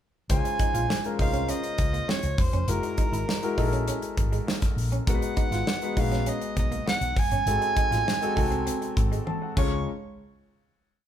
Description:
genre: polished 1980s jazz-funk pop.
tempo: 100 BPM.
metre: 4/4.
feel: straight.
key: Db major.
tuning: A4 = 438 Hz.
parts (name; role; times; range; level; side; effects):
clear soprano saxophone; melody; 0.3-9.9 s; Bb4 to Db6; -30 LUFS; right 3 dB; none.
warm grand piano; accompaniment; 0.3-9.9 s; Ab3 to A5; -31 LUFS; left 4 dB; none.
woody fretless electric bass; bass; 0.3-9.8 s; Fb1 to Db2; -30 LUFS; equal; none.
modern studio drum kit; drums; 0.3-9.7 s; crash cymbal, hi-hat, kick drum, snare drum, toms; -27 LUFS; equal; none.
electric guitar through a small old amp; riff; 0.4-9.8 s; Ab3 to F4; -36 LUFS; right 4 dB; none.
room: moderate large studio reverb, RT60 1.2 s.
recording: band playing live in one room.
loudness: -23 LUFS.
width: side -10 dB against mid.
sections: 0.3-9.9 verse; 9.9-11.1 final hit.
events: grand piano fill 9.0-9.9; drum fill 9.3-9.9.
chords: 0.3 Dbmaj9; 2.7 Gb13; 5.1 Cb6; 7.5 Ab7b9; 9.6 Dbadd9; 9.9 N.C..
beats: | 0.30 0.90 1.49 2.09 | 2.69 3.28 3.88 4.48 | 5.07 5.67 6.27 6.87 | 7.47 8.07 8.67 9.27 | 9.87.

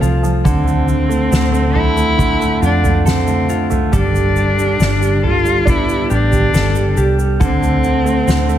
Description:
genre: pop ballad.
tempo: 69 BPM.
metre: 4/4.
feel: straight.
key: unclear.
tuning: A4 = 440 Hz.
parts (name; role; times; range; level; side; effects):
warm cello; melody; 0.0-8.6 s; C4 to F4; -19 LUFS; left 1 dB; none.
clear grand piano; accompaniment; 0.0-8.6 s; D3 to D4; -19 LUFS; right 6 dB; none.
direct-recorded clean electric guitar; arpeggios; 0.0-8.6 s; D3 to A4; -23 LUFS; left 8 dB; none.
vintage muted fingered electric bass; bass; 0.0-8.6 s; G1 to F2; -17 LUFS; equal; none.
tube shaker; percussion; 0.0-8.6 s; none; -35 LUFS; right 10 dB; none.
soft-mallet drum kit; drums; 0.5-8.5 s; kick drum, snare drum, toms; -19 LUFS; equal; none.
room: light reverb, studio reverb.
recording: none.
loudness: -12 LUFS.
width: side -11 dB against mid.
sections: 0.0-8.6 A section.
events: none.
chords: 0.5 Dm7; 3.9 Gadd9; 7.4 D7(no3).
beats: | 0.45 1.32 2.19 3.06 | 3.93 4.80 5.67 6.54 | 7.41 8.28.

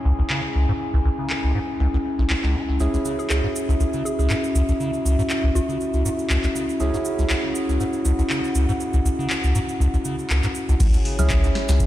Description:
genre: acid house.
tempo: 120 BPM.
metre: 4/4.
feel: swing 54% on 16ths.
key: C# minor.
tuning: A4 = 437 Hz.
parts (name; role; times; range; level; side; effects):
dark analog pad; sustained chords; 0.0-11.9 s; C#4 to G#5; -25 LUFS; left 1 dB; chorus, sidechain pumping.
clear concert grand piano; stabs; 0.0-11.9 s; C#4 to G#4; -33 LUFS; right 4 dB; vintage 12-bit sampler grit, diffuse ambient delay.
liquid acid bass; riff; 0.1-11.8 s; B1 to C#3; -22 LUFS; equal; phaser, tube saturation, sidechain pumping.
booming analog drum machine; drums; 0.3-11.9 s; congas, crash cymbal, handclaps, hi-hat, snare drum, woodblock; -29 LUFS; left 1 dB; low-pass filter on cymbals, low-pass filter on snare, low-pass filter on hats, low-pass filter on perc, low-pass filter on room.
cabasa; percussion; 2.8-11.9 s; none; -36 LUFS; right 4 dB; none.
hollow square pluck; melody; 3.2-6.1 s; F#4 to G#4; -34 LUFS; right 2 dB; chorus, diffuse ambient delay.
round analog bass; bass; 10.8-11.9 s; C#2; -19 LUFS; equal; tube saturation, sidechain pumping.
dusty soul sampler-style drum kit; drums; 10.8-11.9 s; hi-hat, snare drum; -43 LUFS; left 2 dB; none.
electronic kick drum; drums; 10.8-11.9 s; none; -20 LUFS; equal; none.
room: wet church reverb, RT60 2.8 s.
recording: dreamy mix soaked in reverb.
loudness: -19 LUFS.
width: side -14 dB against mid.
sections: 0.0-10.8 A section; 10.8-11.9 B section.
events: drop 10.8-11.9.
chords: 0.0 C#m.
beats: 0.30 | 0.80 1.30 1.80 2.30 | 2.80 3.30 3.80 4.30 | 4.80 5.30 5.80 6.30 | 6.80 7.30 7.80 8.30 | 8.80 9.30 9.80 10.30 | 10.80 11.30 11.80.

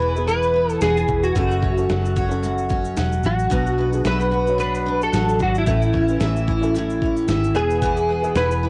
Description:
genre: acoustic pop.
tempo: 111 BPM.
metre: 4/4.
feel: swing 55% on 16ths.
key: A major.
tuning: A4 = 441 Hz.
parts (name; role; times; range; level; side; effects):
direct-recorded clean electric guitar; melody; 0.0-8.7 s; E4 to B4; -24 LUFS; equal; ensemble chorus, analog delay.
felt-muted upright piano; accompaniment; 0.0-8.7 s; B3 to C#5; -31 LUFS; equal; cassette tape.
picked steel-string acoustic guitar; accompaniment; 0.0-8.7 s; E2 to F#4; -28 LUFS; equal; double-tracked, cassette tape.
mandolin; arpeggios; 0.0-8.7 s; A3 to G#5; -34 LUFS; equal; cassette tape, analog delay.
vintage muted fingered electric bass; bass; 0.0-8.7 s; E1 to B1; -26 LUFS; equal; tube saturation.
dusty soul sampler-style drum kit; drums; 0.2-8.6 s; kick drum, shaker, snare drum; -29 LUFS; equal; overdrive, cassette tape.
room: little or no reverb.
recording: home recording on cassette.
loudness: -20 LUFS.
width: mono.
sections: 0.0-8.7 A section.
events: none.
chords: 0.0 E; 1.4 F#m; 3.5 Bm; 5.7 A; 7.6 E.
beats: 0.28 0.82 | 1.36 1.90 2.44 2.98 | 3.52 4.06 4.59 5.13 | 5.67 6.21 6.75 7.29 | 7.83 8.36.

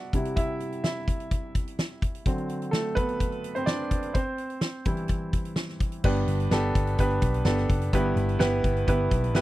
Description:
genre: piano-driven pop.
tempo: 127 BPM.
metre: 4/4.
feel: straight.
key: G major.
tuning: A4 = 440 Hz.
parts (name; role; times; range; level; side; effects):
clear baby grand piano; accompaniment; 0.0-9.4 s; G2 to F#5; -28 LUFS; right 1 dB; none.
loose indie drum kit; drums; 0.1-9.4 s; crash cymbal, hi-hat, kick drum, snare drum; -27 LUFS; equal; none.
vintage muted picked electric bass; bass; 6.0-9.4 s; F#1 to B1; -26 LUFS; equal; none.
room: little or no reverb.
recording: dry, close 1970s-style studio recording.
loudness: -24 LUFS.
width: side -16 dB against mid.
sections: 0.0-6.0 A section; 6.0-9.4 B section.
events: grand piano solo 0.0-6.0.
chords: 0.1 C; 2.3 D7; 4.1 C; 6.0 G; 7.9 Em/G.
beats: | 0.37 0.84 1.31 1.78 | 2.26 2.73 3.20 3.67 | 4.15 4.62 5.09 5.57 | 6.04 6.51 6.99 7.46 | 7.93 8.40 8.88 9.35.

